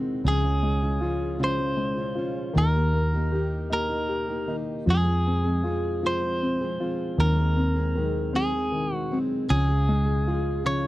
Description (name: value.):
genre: six-eight pop ballad.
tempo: 52 BPM (dotted quarters).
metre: 6/8.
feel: straight.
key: unclear.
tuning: A4 = 440 Hz.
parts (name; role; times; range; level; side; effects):
warm baby grand piano; accompaniment; 0.0-10.9 s; Db3 to G4; -29 LUFS; left 2 dB; none.
fingerpicked plugged-in steel-string acoustic guitar; arpeggios; 0.0-10.9 s; F2 to Ab4; -32 LUFS; right 1 dB; none.
vintage muted fingered electric bass; bass; 0.0-10.9 s; Db2 to F2; -25 LUFS; equal; none.
direct-recorded clean electric guitar; melody; 0.3-10.9 s; Ab4 to Db5; -29 LUFS; equal; none.
room: light reverb.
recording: dry, close 1970s-style studio recording.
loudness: -23 LUFS.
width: side -16 dB against mid.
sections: 0.0-10.9 A section.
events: none.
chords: 0.2 Db; 2.6 Eb; 4.9 Fm; 7.2 Ab7/Eb; 9.5 Db.